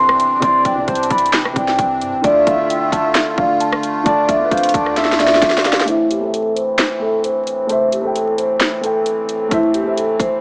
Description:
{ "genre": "hip hop, trap", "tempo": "132 BPM", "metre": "4/4", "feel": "half-time", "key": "A minor", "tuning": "A4 = 440 Hz", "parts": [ { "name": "vibraphone with soft mallets", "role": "melody", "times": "0.0-10.4 s", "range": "E4 to C6", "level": "-19 LUFS", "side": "equal", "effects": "low-pass filter" }, { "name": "dark concert grand piano", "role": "accompaniment", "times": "0.0-10.4 s", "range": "C3 to G5", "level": "-25 LUFS", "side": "equal", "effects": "low-pass filter" }, { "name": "accordion", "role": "sustained chords", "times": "0.0-10.4 s", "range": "A2 to F4", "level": "-28 LUFS", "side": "equal", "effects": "light tremolo tuning, low-pass filter" }, { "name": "clean 808-style bass", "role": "bass", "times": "0.0-5.6 s", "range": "D1 to G2", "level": "-40 LUFS", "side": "equal", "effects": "none" }, { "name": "trap drum kit", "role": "drums", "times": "0.1-10.3 s", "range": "handclaps, hi-hat, kick drum, rim click, snare drum", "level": "-21 LUFS", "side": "equal", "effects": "overdrive" }, { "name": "soft octave-layered synth lead", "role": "second line", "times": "0.4-5.8 s", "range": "C5 to E5", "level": "-24 LUFS", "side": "equal", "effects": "chorus, digital delay" } ], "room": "light reverb, studio ambience", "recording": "vinyl crackle, small speaker sound", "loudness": "-16 LUFS", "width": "mono", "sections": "0.0-5.9 A section; 5.9-10.4 B section", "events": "drum fill 5.0-5.9; filter sweep 5.9-10.4", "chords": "0.0 Cadd9; 2.2 Dm; 5.9 Am" }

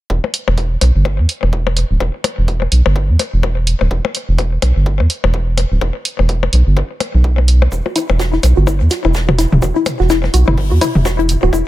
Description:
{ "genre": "minimal techno", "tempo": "126 BPM", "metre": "4/4", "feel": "swing 58% on 16ths", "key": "E minor", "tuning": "A4 = 440 Hz", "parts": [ { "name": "round analog bass", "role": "bass", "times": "0.1-11.6 s", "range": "D1 to E2", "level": "-13 LUFS", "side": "equal", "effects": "sidechain pumping" }, { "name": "electronic kick drum", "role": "drums", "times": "0.1-11.6 s", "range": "none", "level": "-27 LUFS", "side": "equal", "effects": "high-pass filter on kick, high-pass filter on room" }, { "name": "electronic percussion blips and toms", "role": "percussion", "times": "0.2-11.5 s", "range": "none", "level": "-20 LUFS", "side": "left 4 dB", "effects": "tape echo" }, { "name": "electronic hi-hat", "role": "drums", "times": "0.3-11.4 s", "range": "none", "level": "-20 LUFS", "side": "right 2 dB", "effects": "none" }, { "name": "tight funk drum kit", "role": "drums", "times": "7.7-11.7 s", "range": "hi-hat, shaker, snare drum", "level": "-28 LUFS", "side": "equal", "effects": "high-pass filter on hats, high-pass filter on snare, high-pass filter on perc, high-pass filter on room" }, { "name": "hollow square pluck", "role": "riff", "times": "7.9-11.6 s", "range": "E4 to F#4", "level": "-18 LUFS", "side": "left 2 dB", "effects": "chorus, sidechain pumping, tape echo" } ], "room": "studio reverb", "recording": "echo-heavy mix", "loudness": "-12 LUFS", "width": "side -15 dB against mid", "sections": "0.1-11.7 A section", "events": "none", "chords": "0.1 Em" }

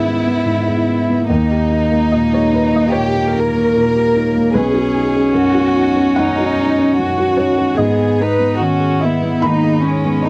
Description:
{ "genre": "neoclassical piano and strings", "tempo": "74 BPM", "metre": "4/4", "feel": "rubato", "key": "G# minor", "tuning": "A4 = 441 Hz", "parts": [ { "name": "warm chamber violin section", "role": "melody", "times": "0.0-10.3 s", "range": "C#4 to B4", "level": "-20 LUFS", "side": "equal", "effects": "none" }, { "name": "dark viola", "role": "accompaniment", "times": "0.0-10.3 s", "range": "G#3 to D#4", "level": "-20 LUFS", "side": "equal", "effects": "none" }, { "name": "felt-muted upright piano", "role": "accompaniment", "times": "0.0-10.3 s", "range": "B1 to B5", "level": "-19 LUFS", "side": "equal", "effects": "none" } ], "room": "light reverb", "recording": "dry, close 1970s-style studio recording", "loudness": "-15 LUFS", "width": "mono", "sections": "0.0-10.3 A section", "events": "none", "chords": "0.0 C#m7; 1.3 D#; 4.5 Badd9; 7.8 G#m" }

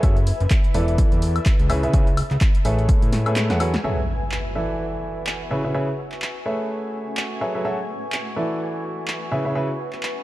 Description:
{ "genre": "piano house", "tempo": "126 BPM", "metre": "4/4", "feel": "swing 57% on 16ths", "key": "F# minor", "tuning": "A4 = 440 Hz", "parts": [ { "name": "clear grand piano", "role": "riff", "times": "0.0-9.7 s", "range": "C#3 to F#5", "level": "-26 LUFS", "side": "equal", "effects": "sidechain pumping, low-pass filter, dub echo" }, { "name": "fat analog bass", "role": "bass", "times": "0.0-3.8 s", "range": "E1 to A2", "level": "-22 LUFS", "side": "equal", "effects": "sidechain pumping" }, { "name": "electronic kick drum", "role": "drums", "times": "0.0-3.0 s", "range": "none", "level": "-17 LUFS", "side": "equal", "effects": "overdrive" }, { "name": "punchy analog drum machine", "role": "drums", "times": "0.0-10.1 s", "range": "handclaps, hi-hat, snare drum, woodblock", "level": "-29 LUFS", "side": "left 1 dB", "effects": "overdrive" }, { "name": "granular cloud pad", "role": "texture", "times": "0.0-10.2 s", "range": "A3 to A5", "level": "-32 LUFS", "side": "left 1 dB", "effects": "built-in reverb, sidechain pumping" }, { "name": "rich chamber string section", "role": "sustained chords", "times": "3.8-10.2 s", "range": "F#4 to G#5", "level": "-36 LUFS", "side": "right 1 dB", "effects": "sidechain pumping, low-pass filter" }, { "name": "impact", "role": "sound effects", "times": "3.8-5.7 s", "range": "none", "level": "-29 LUFS", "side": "equal", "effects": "none" } ], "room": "light reverb", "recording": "dark, warm production", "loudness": "-20 LUFS", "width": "side -16 dB against mid", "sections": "0.0-3.8 A section; 3.8-10.2 B section", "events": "drum fill 3.1-3.8; kick drops out 3.4-3.8; impact 3.8-5.7; filter sweep on string section 3.8-10.2", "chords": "0.0 F#m9; 1.0 E7sus4; 1.7 C#m7; 2.6 Amaj9; 3.8 F#m9; 4.8 E7sus4; 5.5 C#m7; 6.5 Amaj9; 7.7 F#m9; 8.6 E7sus4; 9.3 C#m7" }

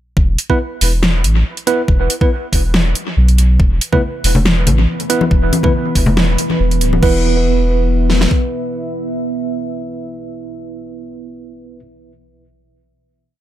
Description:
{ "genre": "deep dubstep", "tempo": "140 BPM", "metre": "4/4", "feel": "swing 54% on 16ths, half-time", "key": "unclear", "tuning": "A4 = 440 Hz", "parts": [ { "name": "soft dub sub bass", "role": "bass", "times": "0.2-8.3 s", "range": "D1 to B1", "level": "-14 LUFS", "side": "equal", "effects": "none" }, { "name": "dubstep drum kit", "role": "drums", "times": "0.2-8.4 s", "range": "kick drum, snare drum", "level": "-14 LUFS", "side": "equal", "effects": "overdrive" }, { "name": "dubstep drum kit", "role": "drums", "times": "0.4-7.1 s", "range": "crash cymbal, hi-hat, snare drum", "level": "-19 LUFS", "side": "equal", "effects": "overdrive, dub echo" }, { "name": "tine electric piano", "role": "stabs", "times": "0.5-11.8 s", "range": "B3 to B4", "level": "-20 LUFS", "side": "right 3 dB", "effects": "medium stereo tremolo, dub echo" }, { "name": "deep dark ambient pad", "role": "sustained chords", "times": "4.6-11.2 s", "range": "E3 to E5", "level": "-22 LUFS", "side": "equal", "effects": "chorus, built-in reverb" }, { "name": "congas", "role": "percussion", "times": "3.9-7.0 s", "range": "none", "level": "-19 LUFS", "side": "left 3 dB", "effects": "dub echo" } ], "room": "little or no reverb", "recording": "echo-heavy mix, faint mains hum", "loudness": "-12 LUFS", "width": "side -12 dB against mid", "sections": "0.2-7.0 drop; 7.0-10.5 final chord", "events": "drop 0.2-7.0", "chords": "0.2 E5" }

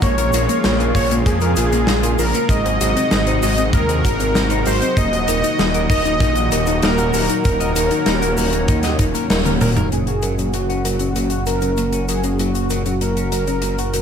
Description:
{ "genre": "synthwave", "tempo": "97 BPM", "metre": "4/4", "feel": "straight", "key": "unclear", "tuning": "A4 = 440 Hz", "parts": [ { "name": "soft supersaw", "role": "melody", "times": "0.0-14.0 s", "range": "Gb4 to Eb5", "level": "-21 LUFS", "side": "right 1 dB", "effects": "tape echo" }, { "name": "lush unison pad", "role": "sustained chords", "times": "0.0-14.0 s", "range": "Bb2 to Gb4", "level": "-24 LUFS", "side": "right 1 dB", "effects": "chorus, sidechain pumping" }, { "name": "thumb-piano-like synth pluck", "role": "arpeggios", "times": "0.0-14.0 s", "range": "Ab3 to Gb5", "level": "-25 LUFS", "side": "left 3 dB", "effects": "chorus, ping-pong delay" }, { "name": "electric guitar at the edge of break-up", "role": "riff", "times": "0.0-14.0 s", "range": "Gb3 to Eb5", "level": "-27 LUFS", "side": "left 4 dB", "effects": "wide subtle chorus, low-pass filter, ping-pong delay" }, { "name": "wide detuned saw bass", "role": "bass", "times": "0.0-14.0 s", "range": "Eb1 to F2", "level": "-21 LUFS", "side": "equal", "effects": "chorus, tube saturation, sidechain pumping" }, { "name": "big rock drum kit", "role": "drums", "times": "0.0-14.0 s", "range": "hi-hat, shaker, snare drum, toms", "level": "-23 LUFS", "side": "left 1 dB", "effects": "none" }, { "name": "kick drum", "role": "drums", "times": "0.0-9.1 s", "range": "none", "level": "-22 LUFS", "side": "equal", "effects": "none" } ], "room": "light reverb, studio ambience", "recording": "none", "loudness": "-15 LUFS", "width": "side -8 dB against mid", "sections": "0.0-9.9 A section; 9.9-14.0 B section", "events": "band accent 9.3-9.6; drum fill 9.5-9.9", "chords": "0.0 Bbm7; 2.5 Ab7; 5.0 Ebm; 9.9 Gb" }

